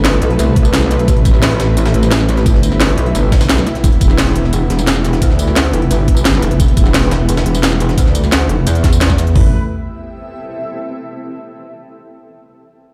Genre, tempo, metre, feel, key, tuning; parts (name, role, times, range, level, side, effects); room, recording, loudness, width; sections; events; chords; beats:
dark technical drum and bass; 174 BPM; 4/4; straight; A minor; A4 = 441 Hz
dark studio string section; sustained chords; 0.0-9.5 s; E3 to B4; -24 LUFS; equal; sidechain pumping
metallic wobble bass; bass; 0.0-9.5 s; E1 to E2; -16 LUFS; equal; chorus, overdrive, sidechain pumping
breakbeat sampler-style drum kit; drums; 0.0-9.3 s; hi-hat, snare drum; -29 LUFS; equal
drum and bass drum kit; drums; 0.0-9.3 s; hi-hat, snare drum, tambourine; -19 LUFS; equal
granular cloud pad; texture; 0.0-10.7 s; B3 to E5; -29 LUFS; equal; built-in reverb, sidechain pumping
drum and bass drum kit; drums; 0.6-9.4 s; hi-hat, kick drum, toms; -14 LUFS; equal
digital ambience; played on a big sound system in a bare room, large studio reverb; -13 LUFS; mono
0.0-9.4 A section; 9.4-10.7 B section
fade-out on ambient pad 0.0-9.4
0.0 Am; 3.8 Em; 9.4 Am
0.05 0.39 0.73 | 1.08 1.43 1.77 2.12 | 2.46 2.80 3.15 3.49 | 3.84 4.18 4.53 4.87 | 5.22 5.56 5.91 6.25 | 6.60 6.94 7.29 7.63 | 7.98 8.32 8.67 9.01 | 9.36 9.70 10.05 10.39